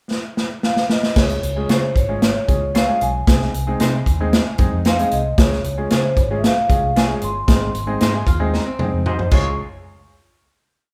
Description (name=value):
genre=uptempo 1960s-style soul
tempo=114 BPM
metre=4/4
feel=straight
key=Db major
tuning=A4 = 440 Hz
part: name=natural country drum kit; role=drums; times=0.1-9.4 s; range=crash cymbal, hi-hat, kick drum, snare drum, toms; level=-20 LUFS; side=equal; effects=none
part: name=vibraphone with soft mallets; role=melody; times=0.6-9.6 s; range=C5 to Db6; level=-25 LUFS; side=equal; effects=none
part: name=clear upright piano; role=accompaniment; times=1.2-9.6 s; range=Ab3 to Eb5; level=-28 LUFS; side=equal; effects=none
part: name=vintage muted fingered electric bass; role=bass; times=1.2-9.6 s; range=G1 to Db3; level=-26 LUFS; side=equal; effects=none
part: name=electric guitar through a small old amp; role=stabs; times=1.7-9.5 s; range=Eb4 to Db5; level=-31 LUFS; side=equal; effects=spring reverb
part: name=archtop guitar, miked and amplified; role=riff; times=8.1-9.3 s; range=C4 to Ab4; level=-32 LUFS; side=equal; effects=none
room=light reverb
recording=band playing live in one room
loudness=-18 LUFS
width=mono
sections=0.0-1.2 pickup bar; 1.2-9.6 verse; 9.6-10.9 final hit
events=drum fill 0.1-1.2, 8.5-9.6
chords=0.0 N.C.; 1.2 Db; 3.3 Ab/C; 5.4 Db; 7.5 Ab; 9.3 Db; 9.6 N.C.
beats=0.11 0.64 | 1.17 1.69 2.22 2.75 | 3.28 3.80 4.33 4.86 | 5.38 5.91 6.43 6.96 | 7.48 8.01 8.53 9.06